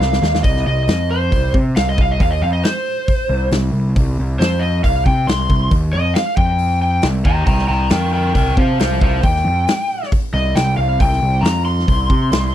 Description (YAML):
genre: blues rock power trio and southern rock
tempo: 136 BPM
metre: 4/4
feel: straight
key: C minor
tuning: A4 = 440 Hz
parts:
  - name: overdriven slide guitar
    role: melody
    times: 0.0-12.5 s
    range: Bb4 to C6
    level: -19 LUFS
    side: left 1 dB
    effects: slapback echo
  - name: fuzz picked electric bass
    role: bass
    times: 0.0-12.5 s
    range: C2 to C3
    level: -17 LUFS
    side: equal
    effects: overdrive
  - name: big rock drum kit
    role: drums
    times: 0.0-12.4 s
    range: hi-hat, kick drum, snare drum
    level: -19 LUFS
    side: equal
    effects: none
room: little or no reverb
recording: dry, close 1970s-style studio recording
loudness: -14 LUFS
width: side -11 dB against mid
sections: 0.0-12.5 A section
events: electric slide guitar solo 0.0-12.5; drum fill 0.0-0.4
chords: 0.0 Cm; 0.9 F5; 1.3 N.C.; 4.4 F5; 4.8 Cm; 6.4 Fsus2; 7.0 Cm; 7.9 Fsus24; 8.4 C5; 11.4 F5; 11.9 N.C.